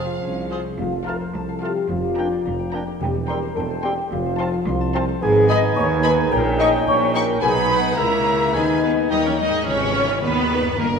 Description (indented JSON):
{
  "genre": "cinematic, playful, whimsical film cue",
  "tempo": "108 BPM",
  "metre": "2/4",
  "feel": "straight",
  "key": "F major, G# minor from 5.2 s",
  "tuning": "A4 = 444 Hz",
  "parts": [
    { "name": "rich chamber violin section", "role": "melody", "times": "0.0-11.0 s", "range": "A#4 to C#6", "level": "-27 LUFS", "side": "left 2 dB", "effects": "none" },
    { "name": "mellow cor anglais", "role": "second line", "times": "0.0-9.4 s", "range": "Ab4 to A5", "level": "-30 LUFS", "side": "right 1 dB", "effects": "none" },
    { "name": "mellow hollow large flute ensemble", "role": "second line", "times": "0.0-9.4 s", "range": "D#5 to D#6", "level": "-27 LUFS", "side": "left 1 dB", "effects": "none" },
    { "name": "rich chamber violin section", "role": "second line", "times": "0.0-11.0 s", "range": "A#4 to A5", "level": "-30 LUFS", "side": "equal", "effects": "none" },
    { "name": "warm clarinet", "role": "second line", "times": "0.0-9.4 s", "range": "C4 to F4", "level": "-30 LUFS", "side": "right 2 dB", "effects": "none" },
    { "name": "mellow bassoon", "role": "accompaniment", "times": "0.0-9.4 s", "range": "F3 to C#4", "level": "-29 LUFS", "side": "right 1 dB", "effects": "none" },
    { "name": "warm studio viola section", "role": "accompaniment", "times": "0.0-10.9 s", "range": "A#3 to Ab4", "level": "-27 LUFS", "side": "right 1 dB", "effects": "none" },
    { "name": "dark French horn section", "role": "sustained chords", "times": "0.0-10.6 s", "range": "B3 to D#5", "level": "-23 LUFS", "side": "left 3 dB", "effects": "none" },
    { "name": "concert harp", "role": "arpeggios", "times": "0.0-11.0 s", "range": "G2 to C6", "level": "-30 LUFS", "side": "left 6 dB", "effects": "none" },
    { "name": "clear chamber cello section", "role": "bass", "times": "0.0-10.9 s", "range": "C2 to G#3", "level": "-30 LUFS", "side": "right 3 dB", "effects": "none" },
    { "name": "clear chamber double bass section", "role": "bass", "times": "0.0-11.0 s", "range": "E1 to D#2", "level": "-28 LUFS", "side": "right 5 dB", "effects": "none" },
    { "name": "warm tuba", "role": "bass", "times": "0.8-11.0 s", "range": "E1 to D#2", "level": "-29 LUFS", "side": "right 4 dB", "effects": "none" },
    { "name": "cymbal swell and tam-tam", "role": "percussion", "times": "7.4-11.0 s", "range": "none", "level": "-34 LUFS", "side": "left 4 dB", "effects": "none" }
  ],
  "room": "wet scoring stage reverb, RT60 1.7 s",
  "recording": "minimal, uncompressed stereo recording",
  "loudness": "-18 LUFS",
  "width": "side -6 dB against mid",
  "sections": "0.8-9.7 A section; 9.7-11.0 B section",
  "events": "band accent 9.7-10.2",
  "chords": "0.0 Fm; 0.8 F; 1.9 Gm7/F; 3.0 C/E; 4.1 F; 5.2 G#m; 6.3 D#7/A#; 7.4 G#m/B; 8.0 A#dim/C#; 8.5 G#m/D#; 9.1 D#; 9.7 G#m",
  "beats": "0.23 | 0.79 1.35 | 1.90 2.46 | 3.01 3.56 | 4.12 4.67 | 5.22 5.77 | 6.32 6.87 | 7.42 7.98 | 8.54 9.11 | 9.67 10.23 | 10.79"
}